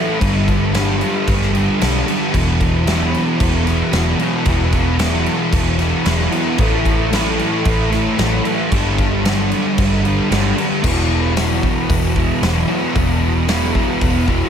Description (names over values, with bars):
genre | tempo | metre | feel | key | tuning
rock, shoegaze and dream pop | 113 BPM | 4/4 | straight | unclear | A4 = 440 Hz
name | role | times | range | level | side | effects
thick fuzz guitar | riff | 0.0-14.5 s | E2 to A3 | -17 LUFS | equal | distortion, analog chorus
vintage muted fingered electric bass | bass | 0.2-14.4 s | E1 to B1 | -20 LUFS | equal | none
huge arena drum kit | drums | 0.2-14.4 s | crash cymbal, hi-hat, kick drum, snare drum | -20 LUFS | equal | none
room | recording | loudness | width
light reverb | none | -14 LUFS | side -8 dB against mid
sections
0.0-10.8 A section; 10.8-14.5 B section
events
none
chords
0.2 G5; 2.3 E5; 6.6 A5; 8.7 G5; 10.8 E5